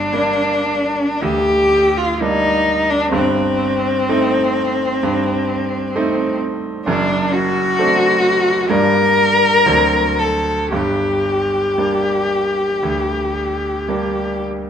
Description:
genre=classical, romantic duo for cello and grand piano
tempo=53-66 BPM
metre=4/4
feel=rubato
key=G minor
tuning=A4 = 443 Hz
part: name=rich cello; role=melody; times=0.0-14.4 s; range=C4 to Bb4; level=-16 LUFS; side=left 2 dB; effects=none
part: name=bright grand piano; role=accompaniment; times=0.0-14.7 s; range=F#1 to Eb4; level=-20 LUFS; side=right 3 dB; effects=none
room=wet recital hall reverb, RT60 1.8 s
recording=none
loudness=-14 LUFS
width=side -8 dB against mid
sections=0.0-14.7 A section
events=none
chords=0.0 Gm; 3.1 Am7b5/G; 6.9 D7/F#; 8.7 Gm; 9.7 D7; 10.7 Gm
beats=0.13 1.23 2.21 | 3.13 4.08 5.03 5.95 | 6.87 7.79 8.70 9.66 | 10.73 11.78 12.83 13.89

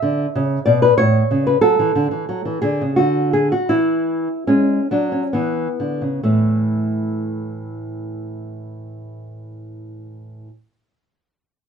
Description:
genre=classical, baroque-style dance for nylon-string guitar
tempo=64-94 BPM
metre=3/4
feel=rubato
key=A major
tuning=A4 = 436 Hz
part: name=nylon-string guitar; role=solo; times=0.0-10.5 s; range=A2 to E5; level=-17 LUFS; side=equal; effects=none
room=moderate small room reverb, RT60 0.5 s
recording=minimal, uncompressed stereo recording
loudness=-16 LUFS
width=side -6 dB against mid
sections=0.0-6.3 A section; 6.3-11.5 B section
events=slowing down 0.7-6.3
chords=0.0 Bmadd11; 1.0 A; 1.6 F#m; 3.0 N.C.; 3.7 E13; 5.3 E5; 6.3 A5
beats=0.34 0.98 | 1.64 2.32 3.02 | 3.74 4.51 5.35 | 6.25 7.13 8.02 | 8.90 9.78

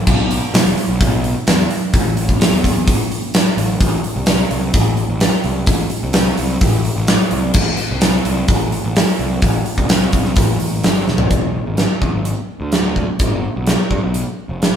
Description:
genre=classic rock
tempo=128 BPM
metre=4/4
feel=straight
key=A minor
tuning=A4 = 440 Hz
part: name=fuzz picked electric bass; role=bass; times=0.1-14.8 s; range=E1 to B2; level=-20 LUFS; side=left 1 dB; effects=overdrive
part: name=huge arena drum kit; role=drums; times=0.1-14.7 s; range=crash cymbal, hi-hat, kick drum, snare drum, toms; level=-15 LUFS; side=equal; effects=none
room=moderate studio reverb, RT60 0.7 s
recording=band playing live in one room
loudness=-14 LUFS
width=side -8 dB against mid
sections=0.0-3.8 A section; 3.8-11.3 B section; 11.3-14.8 C section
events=drum fill 11.1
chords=none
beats=| 0.07 0.54 1.01 1.48 | 1.94 2.41 2.88 3.35 | 3.81 4.28 4.75 5.22 | 5.68 6.15 6.62 7.09 | 7.56 8.03 8.49 8.96 | 9.43 9.90 10.37 10.84 | 11.31 11.78 12.26 12.73 | 13.20 13.68 14.15 14.62

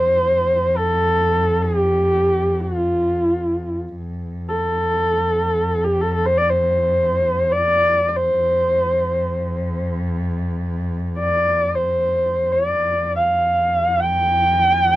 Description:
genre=mongolian traditional, Mongolian folk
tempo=free time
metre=none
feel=none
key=F gong mode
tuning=A4 = 440 Hz
part: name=dark horsehead fiddle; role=melody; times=0.0-15.0 s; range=F4 to G5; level=-17 LUFS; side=equal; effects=none
part: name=warm cello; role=drone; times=0.0-15.0 s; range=F2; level=-24 LUFS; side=equal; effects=none
room=moderate booth ambience, RT60 0.2 s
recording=dry, close 1970s-style studio recording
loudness=-17 LUFS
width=side -15 dB against mid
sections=0.0-4.0 A section; 4.0-15.0 A section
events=none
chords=none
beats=free time

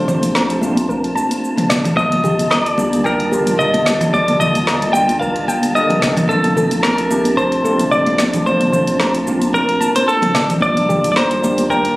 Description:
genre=sunset chillout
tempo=111 BPM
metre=4/4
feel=swing 56% on 16ths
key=Bb major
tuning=A4 = 445 Hz
part: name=clean electric guitar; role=melody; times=0.0-12.0 s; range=A4 to G5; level=-17 LUFS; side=equal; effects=tape echo
part: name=tine electric piano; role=accompaniment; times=0.0-12.0 s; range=D3 to Bb4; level=-20 LUFS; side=equal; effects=medium stereo tremolo, auto-pan, tape echo
part: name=warm sub bass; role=bass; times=0.0-11.9 s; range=Bb1 to Eb2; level=-28 LUFS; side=equal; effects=tube saturation
part: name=wind-like tuned noise texture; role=texture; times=0.0-12.0 s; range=A5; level=-28 LUFS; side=right 1 dB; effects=built-in reverb
part: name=soft round pluck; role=arpeggios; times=0.1-11.9 s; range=G4 to Bb5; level=-24 LUFS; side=left 1 dB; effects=chorus, tape echo
part: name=deep house drum kit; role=drums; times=0.1-11.9 s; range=cabasa, hi-hat, snare drum, toms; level=-22 LUFS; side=equal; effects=small room ambience
part: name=congas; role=percussion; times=0.1-11.6 s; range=none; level=-22 LUFS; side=equal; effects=none
part: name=electronic kick drum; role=drums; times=0.9-11.8 s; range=none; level=-30 LUFS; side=equal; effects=overdrive, small room ambience
room=light reverb, digital ambience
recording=recorded on a phone in the room, club reverb, compression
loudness=-13 LUFS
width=side -19 dB against mid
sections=0.0-12.0 A section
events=none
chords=0.0 Bbmaj9; 2.0 Ebmaj9; 6.3 Bbmaj9; 10.6 Ebmaj9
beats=0.35 0.89 1.43 | 1.97 2.51 3.05 3.59 | 4.13 4.67 5.21 5.75 | 6.29 6.84 7.38 7.92 | 8.46 9.00 9.54 10.08 | 10.62 11.16 11.70

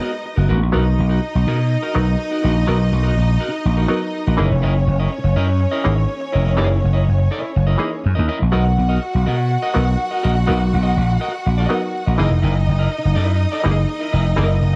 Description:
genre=disco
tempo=123 BPM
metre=4/4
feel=straight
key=B major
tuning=A4 = 440 Hz
part: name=warm studio violin section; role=second line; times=0.0-14.8 s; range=C#4 to F#5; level=-27 LUFS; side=equal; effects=none
part: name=clean electric guitar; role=accompaniment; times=0.0-14.8 s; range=B3 to D#5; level=-29 LUFS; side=equal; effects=none
part: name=muted clav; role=accompaniment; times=0.0-14.8 s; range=E3 to C#5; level=-27 LUFS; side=equal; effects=overdrive
part: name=vintage slap bass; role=bass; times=0.4-14.8 s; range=E#1 to B2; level=-18 LUFS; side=equal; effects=none
room=light reverb, small room ambience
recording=dark, warm production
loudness=-18 LUFS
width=mono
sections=0.7-14.8 A section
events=none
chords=0.0 G#m9; 0.7 Bmaj7; 4.4 F#13; 8.5 Bmaj7; 12.2 F#13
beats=0.24 | 0.73 1.22 1.71 2.19 | 2.68 3.17 3.66 4.14 | 4.63 5.12 5.61 6.09 | 6.58 7.07 7.56 8.04 | 8.53 9.02 9.51 9.99 | 10.48 10.97 11.46 11.94 | 12.43 12.92 13.40 13.89 | 14.38

